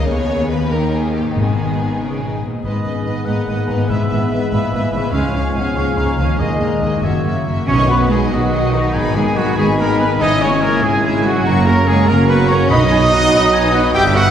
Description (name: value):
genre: cinematic, heroic adventure film score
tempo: 96 BPM (dotted quarters)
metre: 6/8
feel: straight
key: G# minor, B major from 7.7 s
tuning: A4 = 440 Hz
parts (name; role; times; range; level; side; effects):
- clear studio violin section; melody; 0.0-14.3 s; G4 to D#6; -27 LUFS; left 3 dB; none
- clear symphonic violin section; second line; 0.0-14.3 s; D#4 to G5; -27 LUFS; left 2 dB; none
- clear symphonic viola section; accompaniment; 0.0-14.3 s; C#3 to B4; -24 LUFS; equal; none
- concert harp; arpeggios; 0.0-14.3 s; F#2 to B5; -24 LUFS; left 4 dB; none
- clear symphonic double bass section; bass; 0.0-14.3 s; F#1 to D#2; -20 LUFS; right 2 dB; none
- rich symphonic cello section; bass; 0.0-14.2 s; C#2 to G4; -22 LUFS; right 1 dB; none
- timpani; percussion; 1.4-8.3, 12.7-13.3 s; G#2 to D#3; -23 LUFS; equal; none
- warm clarinet; second line; 2.6-7.5 s; G#3 to C#4; -28 LUFS; left 1 dB; none
- warm oboe; second line; 2.6-14.3 s; C#5 to B5; -24 LUFS; right 1 dB; none
- mellow French horn section; sustained chords; 2.6-14.3 s; G#3 to G#4; -24 LUFS; left 2 dB; none
- warm trombone section; sustained chords; 2.6-14.3 s; G#2 to B3; -25 LUFS; right 1 dB; none
- clear trumpet; stabs; 2.6-14.3 s; D#4 to G5; -21 LUFS; right 2 dB; none
- silver concert flute; second line; 2.7-14.2 s; D#5 to G6; -25 LUFS; equal; none
room: wet scoring stage reverb, RT60 1.8 s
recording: heard from further back in the room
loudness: -13 LUFS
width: side -9 dB against mid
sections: 0.0-2.6 A section; 2.6-7.7 B section; 7.7-14.3 C section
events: none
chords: 0.1 G#m/D#; 0.7 D#; 1.3 G#m; 3.9 E/G#; 5.1 C#; 6.4 D#sus4; 7.0 F#7; 7.7 B; 9.0 G#m; 10.2 C#m/G#; 11.5 F#; 12.7 B